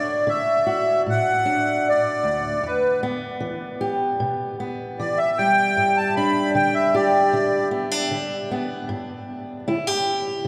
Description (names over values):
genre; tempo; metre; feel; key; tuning
acoustic folk duo or small band; 77 BPM; 4/4; straight; unclear; A4 = 444 Hz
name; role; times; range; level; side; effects
accordion; melody; 0.0-7.7 s; B4 to B5; -24 LUFS; equal; light tremolo tuning
fingerpicked steel-string acoustic guitar; accompaniment; 0.0-10.5 s; D2 to G4; -26 LUFS; equal; none
room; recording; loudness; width
wet cathedral reverb, RT60 6.1 s; recorded in a church or concert hall; -22 LUFS; mono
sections
0.0-8.9 A section; 8.9-10.5 B section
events
accordion solo 0.0-8.9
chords
0.0 D; 2.6 Em; 5.8 G; 8.9 G5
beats
0.27 1.05 1.84 | 2.63 3.41 4.20 4.98 | 5.76 6.55 7.33 8.11 | 8.89 9.67 10.45